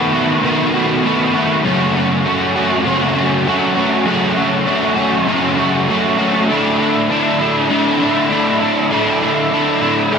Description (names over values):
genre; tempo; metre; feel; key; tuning
rock; 99 BPM; 4/4; straight; unclear; A4 = 441 Hz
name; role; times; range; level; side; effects
crunchy overdriven guitar; solo; 0.0-10.2 s; F#2 to F#4; -13 LUFS; equal; analog chorus, ping-pong delay
room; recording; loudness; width
wet lush hall reverb, RT60 2.5 s; dreamy mix soaked in reverb; -13 LUFS; side -6 dB against mid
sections
0.0-1.6 A section; 1.6-10.2 B section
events
none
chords
0.0 B5; 1.6 F#m; 6.5 Dsus2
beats
0.44 1.04 | 1.65 2.25 2.86 3.46 | 4.07 4.67 5.28 5.88 | 6.49 7.09 7.70 8.31 | 8.91 9.52 10.12